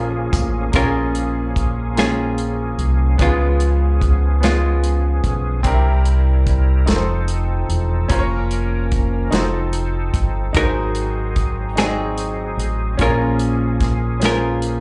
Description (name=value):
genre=slow gospel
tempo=49 BPM (dotted quarters)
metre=6/8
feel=straight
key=Bb minor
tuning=A4 = 440 Hz
part: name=archtop guitar, miked and amplified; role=melody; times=0.0-5.6, 10.6-14.8 s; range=Ab3 to Bb4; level=-25 LUFS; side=equal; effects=slapback echo
part: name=bright upright piano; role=accompaniment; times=0.0-14.8 s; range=Ab2 to Eb5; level=-28 LUFS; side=equal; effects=slapback echo
part: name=bright tonewheel organ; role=sustained chords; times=0.0-14.8 s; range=F3 to Bb4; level=-29 LUFS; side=equal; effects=fast rotary speaker, overdrive, chorus vibrato
part: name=deep dub fingered electric bass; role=bass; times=0.0-14.8 s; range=E1 to Db2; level=-21 LUFS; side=equal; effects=none
part: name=natural country drum kit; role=drums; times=0.3-14.8 s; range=hi-hat, kick drum, snare drum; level=-23 LUFS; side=equal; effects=none
part: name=tambourine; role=percussion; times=0.3-0.7 s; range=none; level=-37 LUFS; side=equal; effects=none
room=light reverb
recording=live gig heard through the venue's PA, club reverb, nothing above 10.5 kHz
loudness=-19 LUFS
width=mono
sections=0.7-14.8 A section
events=none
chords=0.0 Bbm7; 3.2 Db7; 5.7 C7; 6.9 F7; 8.1 Bbm/F; 9.3 F7; 10.6 Ab7; 13.0 Bbm7